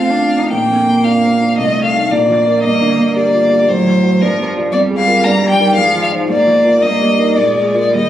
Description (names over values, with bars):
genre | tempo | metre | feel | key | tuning
quick classical-period movement for piano trio | 114 BPM | 2/4 | rubato | Bb major | A4 = 440 Hz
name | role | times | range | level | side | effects
rich violin | melody | 0.0-8.1 s | Bb4 to Bb5 | -14 LUFS | left 2 dB | none
rich cello | second line | 0.0-8.1 s | F3 to Eb4 | -16 LUFS | right 3 dB | none
dark baby grand piano | accompaniment | 0.0-8.1 s | Bb1 to D5 | -16 LUFS | equal | none
room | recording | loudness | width
moderate recital hall reverb, RT60 1.5 s | recorded on a phone in the room, club reverb, compression | -10 LUFS | side -11 dB against mid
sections
0.5-8.1 A section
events
none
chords
0.0 F; 0.5 Bb; 1.6 Adim/C; 2.1 Bb; 2.6 Gm; 3.7 F#dim/A; 4.2 Gm7; 4.7 Bb7(no3)/F; 5.2 Eb/G; 5.8 Fm7/Ab; 6.3 Bb7/Ab; 6.8 Eb/G; 7.4 Bb7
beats
| 0.51 1.05 | 1.58 2.11 | 2.64 3.16 | 3.69 4.21 | 4.73 5.25 | 5.77 6.29 | 6.82 7.37 | 7.93